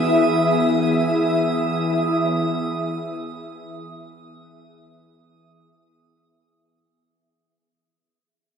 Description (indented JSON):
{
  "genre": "ambient",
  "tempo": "69 BPM",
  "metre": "4/4",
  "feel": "straight",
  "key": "E major",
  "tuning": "A4 = 440 Hz",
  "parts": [
    { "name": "airy breathy pad", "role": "sustained chords", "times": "0.0-6.2 s", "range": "E3 to E5", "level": "-20 LUFS", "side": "left 1 dB", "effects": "chorus" },
    { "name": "felt-muted upright piano", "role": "arpeggios", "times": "0.0-6.2 s", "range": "F#4 to C#5", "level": "-38 LUFS", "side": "left 1 dB", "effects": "none" },
    { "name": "analog drone", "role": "drone", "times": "0.0-6.3 s", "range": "E3", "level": "-29 LUFS", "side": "equal", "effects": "chorus" },
    { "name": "drifting glass-harmonics texture", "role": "texture", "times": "0.0-6.2 s", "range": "D#6", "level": "-29 LUFS", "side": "right 5 dB", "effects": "chorus, built-in reverb" }
  ],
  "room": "wet lush hall reverb, RT60 2.7 s",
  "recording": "dreamy mix soaked in reverb",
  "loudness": "-18 LUFS",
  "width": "side -7 dB against mid",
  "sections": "0.0-6.2 A section",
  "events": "fade-out 0.0-6.2",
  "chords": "0.0 Emaj9"
}